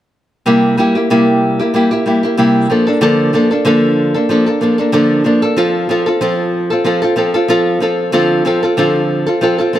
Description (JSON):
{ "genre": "pop", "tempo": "94 BPM", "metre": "4/4", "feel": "swing 55% on 16ths", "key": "unclear", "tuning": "A4 = 440 Hz", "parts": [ { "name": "nylon-string guitar", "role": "accompaniment", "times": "0.5-9.8 s", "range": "C3 to A4", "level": "-11 LUFS", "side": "equal", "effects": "none" } ], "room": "moderate plate reverb, RT60 2.7 s", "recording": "none", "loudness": "-11 LUFS", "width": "side -12 dB against mid", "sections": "0.5-9.8 A section", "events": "none", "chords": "0.5 C7; 2.7 Bbmaj7/D; 5.6 F; 7.8 Dm7", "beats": "| 0.47 1.11 1.75 2.39 | 3.02 3.67 4.30 4.94 | 5.58 6.22 6.86 7.50 | 8.14 8.77 9.41" }